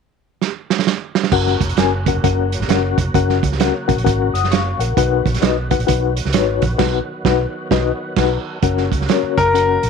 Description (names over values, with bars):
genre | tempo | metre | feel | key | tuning
uptempo 1960s-style soul | 131 BPM | 4/4 | swing 63% on 8ths | F# major | A4 = 440 Hz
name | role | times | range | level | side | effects
vintage drum kit | drums | 0.4-9.9 s | crash cymbal, hi-hat, kick drum, snare drum | -19 LUFS | right 8 dB | none
mellow reed electric piano | accompaniment | 1.3-9.8 s | B2 to D#6 | -19 LUFS | left 13 dB | fast tremolo
overdriven tonewheel organ | sustained chords | 1.3-9.9 s | C#3 to F#4 | -28 LUFS | right 1 dB | fast rotary speaker, chorus vibrato
vintage muted fingered electric bass | bass | 1.3-9.9 s | E#1 to C#2 | -21 LUFS | right 1 dB | none
clear grand piano | melody | 9.4-9.9 s | A#4 | -14 LUFS | left 4 dB | none
room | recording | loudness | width
light reverb, small room ambience | 1960s-style stereo with parts hard left and right | -15 LUFS | side -6 dB against mid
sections
0.0-1.3 A section; 1.3-8.6 B section; 8.6-9.9 C section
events
drum fill 0.4-1.3; band accent 6.8-8.6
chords
0.0 N.C.; 1.3 F#; 5.0 B; 8.6 F#